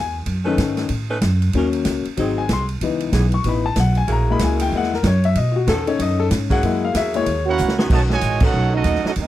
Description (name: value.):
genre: jazz, big band swing.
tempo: 189 BPM.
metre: 4/4.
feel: swing 61% on 8ths.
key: unclear.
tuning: A4 = 440 Hz.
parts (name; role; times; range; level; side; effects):
clear baby grand piano; accompaniment; 0.0-7.4 s; D#3 to C#6; -21 LUFS; left 6 dB; none.
upright bass; bass; 0.0-9.3 s; G#1 to B2; -20 LUFS; right 1 dB; none.
swinging big-band drum kit; drums; 0.3-9.3 s; crash cymbal, hi-hat, kick drum, ride cymbal, snare drum; -24 LUFS; right 1 dB; none.
clear saxophone section; sustained chords; 0.4-8.8 s; D#3 to B4; -26 LUFS; right 2 dB; none.
clear trumpet section; melody; 7.5-9.3 s; C#4 to A5; -22 LUFS; right 4 dB; none.
bright trombone section; second line; 7.5-9.3 s; A2 to F#4; -24 LUFS; right 8 dB; none.
room: little or no reverb.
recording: dry, close 1970s-style studio recording.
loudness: -16 LUFS.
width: side -13 dB against mid.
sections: 0.0-7.9 A section; 7.9-9.3 B section.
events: grand piano solo 0.0-7.9; drum fill 7.6-7.9; band accent 8.4.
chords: 0.3 B9; 1.5 D#m7; 2.2 G#7; 2.8 C#m7; 4.1 F#9; 5.4 B9; 6.6 F#9; 7.9 B9.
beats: | 0.27 0.58 0.90 1.22 | 1.54 1.86 2.17 2.49 | 2.81 3.13 3.45 3.76 | 4.08 4.40 4.72 5.04 | 5.36 5.67 5.99 6.31 | 6.63 6.95 7.26 7.58 | 7.90 8.22 8.54 8.85 | 9.17.